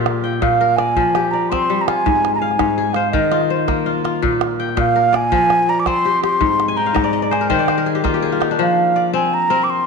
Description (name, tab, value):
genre	west african traditional, West African string and xylophone music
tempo	110 BPM (dotted quarters)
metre	12/8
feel	straight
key	F dorian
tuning	A4 = 440 Hz
part	kora	arpeggios	0.0-9.9 s	Ab2 to Ab5	-18 LUFS	left 5 dB	none
part	calabash	percussion	0.1-8.5 s	none	-24 LUFS	right 6 dB	none
part	breathy mellow concert flute	melody	0.4-9.9 s	Eb5 to D6	-17 LUFS	right 3 dB	none
room	wet echo chamber reverb, RT60 1.9 s, small room ambience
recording	1960s-style stereo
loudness	-14 LUFS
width	side -4 dB against mid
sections	0.0-8.6 A section; 8.6-9.9 B section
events	kora fill 6.7-8.6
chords	0.0 Bb; 1.0 Fm; 2.1 Ab; 3.1 Eb5; 4.2 Bb; 5.3 Fm; 6.4 Ab; 7.5 Eb; 8.6 Fm